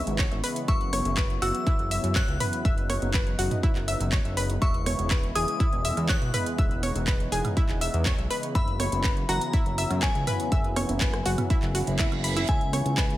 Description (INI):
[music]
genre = progressive house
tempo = 122 BPM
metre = 4/4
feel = straight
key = unclear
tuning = A4 = 440 Hz
[part]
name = glassy synth bell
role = melody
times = 0.0-13.1 s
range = G#5 to F#6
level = -33 LUFS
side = left 2 dB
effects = chorus
[part]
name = lush unison pad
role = sustained chords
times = 0.0-13.2 s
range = C#3 to E4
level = -34 LUFS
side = equal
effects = chorus, sidechain pumping
[part]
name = analog pluck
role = arpeggios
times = 0.0-13.0 s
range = E4 to B5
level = -32 LUFS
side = equal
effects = chorus, sidechain pumping, tape echo
[part]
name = fat analog bass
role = bass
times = 0.0-13.2 s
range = E1 to F#2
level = -29 LUFS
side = equal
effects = tube saturation, sidechain pumping
[part]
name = house drum kit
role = drums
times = 0.1-13.2 s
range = handclaps, hi-hat, rim click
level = -32 LUFS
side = right 1 dB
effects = sidechain pumping on hats, small room ambience
[part]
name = electronic kick drum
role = drums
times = 0.2-13.1 s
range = none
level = -25 LUFS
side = equal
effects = small room ambience
[part]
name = electronic congas, toms and woodblock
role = percussion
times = 0.9-12.8 s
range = none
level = -32 LUFS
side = right 2 dB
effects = overdrive, sidechain pumping on perc, small room ambience, sidechain pumping on toms
[part]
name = reverse cymbal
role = sound effects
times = 11.8-12.5 s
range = none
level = -36 LUFS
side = right 8 dB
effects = none
[sound]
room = digital ambience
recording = none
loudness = -23 LUFS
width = side -15 dB against mid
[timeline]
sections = 0.0-13.2 A section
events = reverse cymbal 11.8-12.5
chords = 0.0 C#m7; 0.7 F#7sus4; 4.6 E6; 8.6 F#7sus4; 12.5 C#m7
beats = 0.19 | 0.68 1.18 1.67 2.16 | 2.65 3.14 3.63 4.12 | 4.62 5.11 5.60 6.09 | 6.58 7.08 7.57 8.06 | 8.55 9.04 9.54 10.03 | 10.52 11.01 11.50 11.99 | 12.49 12.98